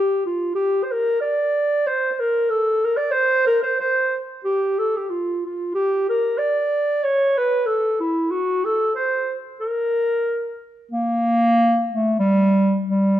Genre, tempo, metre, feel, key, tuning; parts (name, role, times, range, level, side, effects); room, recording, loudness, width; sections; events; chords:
alpine folk; 93 BPM; 2/4; swing 54% on 8ths, rubato; A4 = 439 Hz
dark clarinet; solo; 0.0-13.2 s; G3 to D5; -18 LUFS; equal
moderate recital hall reverb, RT60 1.5 s; dark, warm production; -18 LUFS; side -12 dB against mid
0.5-10.9 A section; 10.9-13.2 B section